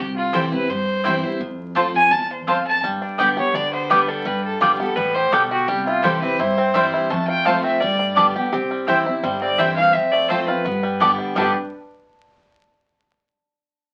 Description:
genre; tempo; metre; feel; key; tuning
bluegrass; 169 BPM; 4/4; straight; G mixolydian; A4 = 440 Hz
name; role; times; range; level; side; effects
clear fiddle; melody; 0.0-11.5 s; F4 to A5; -23 LUFS; equal; none
picked steel-string acoustic guitar; accompaniment; 0.0-11.5 s; E2 to G4; -29 LUFS; equal; none
upright bass; bass; 0.0-11.5 s; G1 to G2; -34 LUFS; equal; none
mandolin; stabs; 0.3-11.5 s; B3 to A5; -21 LUFS; equal; none
bluegrass banjo; melody; 2.8-11.6 s; E3 to G4; -26 LUFS; equal; none
lap resonator guitar; second line; 8.5-9.1, 11.4-11.5 s; D4 to G4; -28 LUFS; equal; none
room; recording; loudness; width
wet studio reverb, RT60 0.6 s; very old 78 rpm record, vinyl crackle; -20 LUFS; mono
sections
0.0-8.5 A section; 8.5-11.4 B section; 11.4-12.8 C section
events
none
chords
0.0 C; 1.4 F; 2.8 G; 5.7 C; 7.1 F; 7.8 Gadd9; 8.5 C; 9.9 F; 10.7 Gadd9

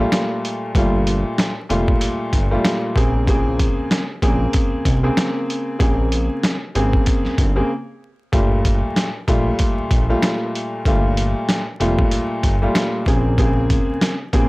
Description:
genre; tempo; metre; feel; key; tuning
hip hop, boom-bap hip-hop; 95 BPM; 4/4; swing 59% on 16ths; G minor; A4 = 436 Hz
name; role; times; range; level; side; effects
warm upright piano; accompaniment; 0.0-14.5 s; Bb2 to Ab4; -21 LUFS; equal; high-pass filter, low-pass filter
fat analog bass; bass; 0.0-14.5 s; F1 to C2; -20 LUFS; equal; none
trip hop sampler-style drum kit; drums; 0.1-14.5 s; hi-hat, kick drum, snare drum; -19 LUFS; equal; none
room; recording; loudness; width
little or no reverb; dry, gritty hardware recording, transformer saturation, vinyl crackle; -16 LUFS; side -22 dB against mid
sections
0.0-14.5 A section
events
break 7.7-8.3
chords
0.0 Gm9; 3.0 Bbm9; 8.3 Gm9; 13.1 Bbm9

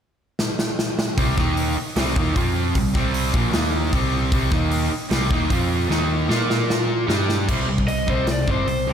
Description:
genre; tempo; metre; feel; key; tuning
hard rock; 152 BPM; 4/4; straight; C minor; A4 = 442 Hz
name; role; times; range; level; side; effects
big rock drum kit; drums; 0.4-8.8 s; crash cymbal, hi-hat, kick drum, snare drum; -23 LUFS; equal; none
distorted electric guitar; riff; 1.2-8.9 s; Bb2 to Bb4; -26 LUFS; left 10 dB; distortion, slapback echo
overdriven semi-hollow guitar; riff; 1.2-8.9 s; Bb2 to Bb4; -25 LUFS; right 10 dB; none
picked electric bass; bass; 1.2-8.9 s; G1 to Bb2; -24 LUFS; equal; none
lead guitar through a small cranked amp; melody; 7.9-8.9 s; C5 to Eb5; -24 LUFS; left 1 dB; overdrive
room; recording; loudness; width
light reverb; none; -18 LUFS; side -8 dB against mid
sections
0.0-1.2 A section; 1.2-7.5 B section; 7.5-8.9 C section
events
drum fill 0.4-1.2, 5.9-7.5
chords
0.0 N.C.; 1.2 C5; 1.4 Eb5; 1.8 Cm; 2.3 F5; 2.7 C5; 3.5 Eb5; 3.9 C5; 4.5 Eb5; 4.9 Cm; 5.5 F5; 5.9 Eb5; 6.3 Bb5; 7.1 G5; 7.5 C5

